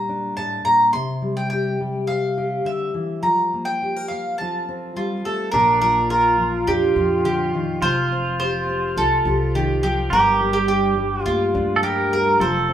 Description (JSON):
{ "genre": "acoustic folk duo or small band", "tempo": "105 BPM", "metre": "4/4", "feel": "straight", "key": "Bb major", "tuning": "A4 = 440 Hz", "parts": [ { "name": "mandolin", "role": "melody", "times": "0.0-12.7 s", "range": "F4 to C6", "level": "-20 LUFS", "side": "right 1 dB", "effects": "none" }, { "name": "fingerpicked steel-string acoustic guitar", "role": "accompaniment", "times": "0.0-12.7 s", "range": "G2 to Bb4", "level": "-24 LUFS", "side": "left 2 dB", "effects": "none" }, { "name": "pedal steel guitar", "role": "second line", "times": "5.5-12.7 s", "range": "D4 to Bb4", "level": "-24 LUFS", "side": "right 4 dB", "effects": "none" }, { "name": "upright bass", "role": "bass", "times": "5.5-12.7 s", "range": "F1 to F2", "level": "-27 LUFS", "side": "equal", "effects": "none" } ], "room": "wet large studio reverb, RT60 0.9 s", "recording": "band playing live in one room", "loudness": "-18 LUFS", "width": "side -10 dB against mid", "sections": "0.0-5.5 A section; 5.5-12.7 A section", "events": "none", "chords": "0.0 Gmadd9/Bb; 0.9 C; 3.2 Fsus4; 4.4 F; 5.5 Bb6; 7.8 Fsus2; 10.1 Gm", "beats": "0.37 | 0.95 1.52 2.10 2.67 | 3.24 3.82 4.39 4.96 | 5.54 6.11 6.68 7.25 | 7.82 8.39 8.97 9.54 | 10.11 10.68 11.25 11.82 | 12.39" }